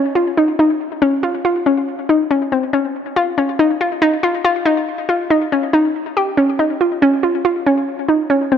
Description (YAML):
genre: progressive instrumental, progressive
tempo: 140 BPM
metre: 7/4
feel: straight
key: unclear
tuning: A4 = 440 Hz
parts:
  - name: hollow square pluck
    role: solo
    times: 0.0-8.6 s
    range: C4 to G4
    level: -14 LUFS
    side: left 1 dB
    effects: chorus, ping-pong delay
room: moderate plate reverb, RT60 3.2 s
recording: dark, warm production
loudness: -14 LUFS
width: side -8 dB against mid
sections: 0.0-1.0 A section; 1.0-8.6 B section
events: none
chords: none